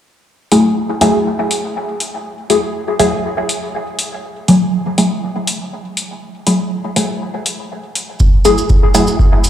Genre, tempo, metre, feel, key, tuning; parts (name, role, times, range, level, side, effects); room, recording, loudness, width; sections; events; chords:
dub techno; 121 BPM; 4/4; swing 53% on 16ths; F# minor; A4 = 440 Hz
filtered dub chord stab; stabs; 0.5-9.1 s; F#3 to G#4; -15 LUFS; left 1 dB; phaser, sidechain pumping, dub echo
electronic hi-hat; drums; 0.5-9.5 s; -19 LUFS; left 2 dB
electronic kick drum; drums; 8.2-9.3 s; -11 LUFS; equal
cabasa; percussion; 8.2-9.5 s; -22 LUFS; right 4 dB
moderate huge ambient reverb, RT60 4.4 s; played on a big sound system in a bare room, large studio reverb; -13 LUFS; side -10 dB against mid
0.3-9.5 A section
filter sweep on synth stab 0.3-9.5
0.3 F#m9